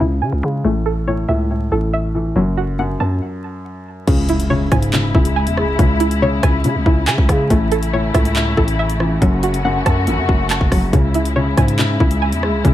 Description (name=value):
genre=hip hop, drill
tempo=140 BPM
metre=4/4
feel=half-time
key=C# minor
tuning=A4 = 439 Hz
part: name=felt-muted upright piano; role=accompaniment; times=0.0-12.7 s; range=F#2 to G#3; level=-21 LUFS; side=left 1 dB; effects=low-pass filter
part: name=string-like resonator pluck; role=arpeggios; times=0.0-12.7 s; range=C#3 to A5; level=-21 LUFS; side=right 1 dB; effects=chorus, low-pass filter, tape echo
part: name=growling 808-style bass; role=bass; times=0.0-12.6 s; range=F#1 to C#3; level=-19 LUFS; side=equal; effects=none
part: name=downlifter and impact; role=sound effects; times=0.0-0.6, 4.1-5.8 s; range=none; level=-30 LUFS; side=equal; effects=none
part: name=muted studio string section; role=sustained chords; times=4.1-12.7 s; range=C#3 to F#4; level=-22 LUFS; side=left 3 dB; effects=none
part: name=drill drum kit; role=drums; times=4.1-12.7 s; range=crash cymbal, handclaps, hi-hat, kick drum, rim click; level=-17 LUFS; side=equal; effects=none
room=little or no reverb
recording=vinyl crackle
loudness=-14 LUFS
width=side -13 dB against mid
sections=0.0-4.1 A section; 4.1-12.7 B section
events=filter sweep 0.0-4.1; stop 3.2-4.1; impact 4.1-5.8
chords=0.0 C#m; 0.6 A; 2.4 F#m; 4.1 C#m; 7.5 A; 9.2 F#m; 10.9 C#m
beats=0.22 | 0.65 1.07 1.50 1.93 | 2.36 2.79 3.22 3.65 | 4.08 4.50 4.93 5.36 | 5.79 6.22 6.65 7.08 | 7.50 7.93 8.36 8.79 | 9.22 9.65 10.07 10.50 | 10.93 11.36 11.79 12.22 | 12.65